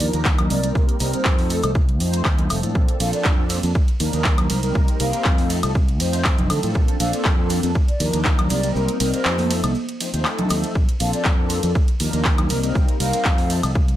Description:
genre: filtered disco house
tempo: 120 BPM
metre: 4/4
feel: straight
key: Bb major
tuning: A4 = 440 Hz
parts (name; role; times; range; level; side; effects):
- mellow hollow concert flute; melody; 0.0-13.5 s; C5 to F5; -29 LUFS; equal; vintage 12-bit sampler grit, sidechain pumping, dub echo
- mellow synth brass; accompaniment; 0.0-13.7 s; F3 to C5; -25 LUFS; left 1 dB; chorus, phaser, sidechain pumping
- fingered electric bass; bass; 0.0-14.0 s; F1 to D3; -23 LUFS; equal; sidechain pumping
- house drum kit; drums; 0.0-14.0 s; handclaps, hi-hat, ride cymbal, woodblock; -25 LUFS; equal; overdrive, sidechain pumping on hats, sidechain pumping on perc, sidechain pumping on cymbals
- maracas and congas; percussion; 0.0-13.9 s; none; -30 LUFS; right 2 dB; sidechain pumping on perc
- electronic kick drum; drums; 0.3-13.9 s; none; -19 LUFS; equal; overdrive
room: digital ambience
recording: none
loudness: -17 LUFS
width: side -13 dB against mid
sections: 0.0-14.0 A section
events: kick drops out 8.8-10.8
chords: 0.0 Ebsus2; 0.5 Cm7; 1.5 F7; 2.8 Bbmaj9; 3.8 Ebsus2; 4.5 Cm7; 5.5 F7; 6.8 Bbmaj9; 7.8 Ebsus2; 8.5 Cm7; 9.5 F7; 10.8 Bbmaj9; 11.8 Ebsus2; 12.5 Cm7

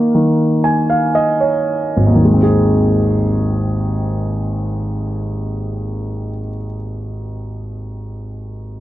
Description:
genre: pop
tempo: 55-62 BPM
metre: 4/4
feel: straight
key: Ab major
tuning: A4 = 441 Hz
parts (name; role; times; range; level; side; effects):
- warm grand piano; accompaniment; 0.0-8.8 s; Ab1 to Ab5; -15 LUFS; equal; none
room: little or no reverb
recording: dry, close 1970s-style studio recording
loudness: -14 LUFS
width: side -14 dB against mid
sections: 0.0-2.2 A section; 2.2-6.6 B section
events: slowing down 0.0-2.2; grand piano fill 0.1-2.2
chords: 0.0 Eb9sus4; 2.2 Ab

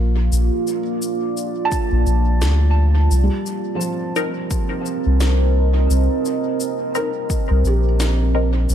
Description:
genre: ambient dub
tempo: 86 BPM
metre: 4/4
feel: swing 59% on 16ths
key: C dorian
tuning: A4 = 440 Hz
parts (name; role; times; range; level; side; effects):
- deep dark ambient pad; sustained chords; 0.0-8.7 s; Bb3 to Eb5; -23 LUFS; right 2 dB; chorus, built-in reverb
- felt-muted upright piano; arpeggios; 0.0-8.7 s; F3 to A5; -28 LUFS; right 1 dB; dub echo
- soft dub sub bass; bass; 0.0-8.7 s; Bb1 to D2; -15 LUFS; equal; none
- electronic shaker and snare drum; drums; 0.3-8.7 s; none; -29 LUFS; left 1 dB; overdrive, dub echo
- electronic kick drum; drums; 1.7-7.5 s; none; -22 LUFS; equal; overdrive
- filtered dub chord stab; stabs; 4.2-8.5 s; C4 to Bb4; -26 LUFS; left 4 dB; phaser, wide subtle chorus, dub echo
room: little or no reverb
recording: none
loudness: -16 LUFS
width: side -10 dB against mid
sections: 0.0-8.7 A section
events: none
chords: 0.0 Bb6; 3.1 Cm7

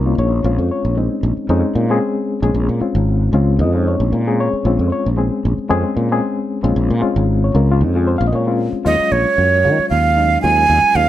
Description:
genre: electric jazz fusion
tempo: 114 BPM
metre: 4/4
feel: swing 54% on 16ths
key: unclear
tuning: A4 = 440 Hz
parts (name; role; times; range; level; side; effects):
- reed electric piano; accompaniment; 0.0-11.1 s; Gb3 to F5; -19 LUFS; left 3 dB; fast tremolo
- sustaining fretless electric bass; bass; 0.0-11.1 s; Ab1 to Eb3; -16 LUFS; equal; none
- breathy bright jazz flute; melody; 8.9-11.1 s; Db5 to Ab5; -13 LUFS; right 4 dB; slapback echo
room: light reverb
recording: none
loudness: -14 LUFS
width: side -13 dB against mid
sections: 0.0-8.9 A section; 8.9-11.1 B section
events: none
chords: 0.4 Bbm9; 8.9 Ebm11

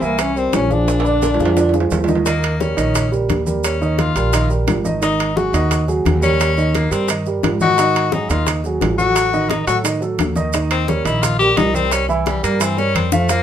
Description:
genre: Afro-Cuban jazz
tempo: 174 BPM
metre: 4/4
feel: straight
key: unclear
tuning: A4 = 440 Hz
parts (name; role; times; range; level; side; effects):
- mellow trombone; melody; 0.0-1.9 s; Bb3 to D4; -20 LUFS; left 4 dB; none
- edgy tenor saxophone; second line; 0.0-13.4 s; E3 to G4; -20 LUFS; left 5 dB; none
- dark upright piano; accompaniment; 0.0-13.4 s; D3 to F5; -20 LUFS; right 4 dB; none
- upright bass; bass; 0.0-13.4 s; Ab1 to A2; -21 LUFS; equal; none
- congas; percussion; 0.0-13.4 s; none; -26 LUFS; left 2 dB; none
- maracas; percussion; 0.0-13.4 s; none; -30 LUFS; right 6 dB; none
- bongos; percussion; 0.2-13.4 s; none; -25 LUFS; left 8 dB; none
- timbales; percussion; 0.2-13.4 s; none; -23 LUFS; right 6 dB; none
room: moderate studio reverb, RT60 0.7 s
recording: minimal, uncompressed stereo recording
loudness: -15 LUFS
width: side -10 dB against mid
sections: 0.0-2.3 A section; 2.3-13.4 B section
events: drum fill 0.9-2.3, 12.8-13.3; tenor saxophone solo 2.3-13.4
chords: 0.2 C7; 0.9 Bb7; 2.3 Eb7; 5.0 Absus2; 6.4 Eb7; 7.8 Ab5; 9.2 Ebdim; 10.5 Eb; 11.9 C7

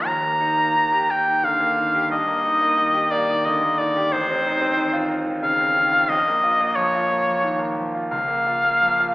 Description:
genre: classical, romantic duo for oboe and grand piano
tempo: 89 BPM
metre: 3/4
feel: rubato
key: Bb minor from 4.1 s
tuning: A4 = 440 Hz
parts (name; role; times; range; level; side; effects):
- clear oboe; melody; 0.0-9.1 s; C5 to Bb5; -19 LUFS; equal; none
- bright concert grand piano; accompaniment; 0.0-9.1 s; A1 to G4; -24 LUFS; equal; none
room: wet recital hall reverb, RT60 1.6 s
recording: recorded in a church or concert hall, AM radio sound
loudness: -18 LUFS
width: side -20 dB against mid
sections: 0.0-9.1 A section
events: none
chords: 0.1 Eb; 2.1 Eb/G; 4.1 F7/A; 6.1 Bbm; 8.1 Bbm/Db

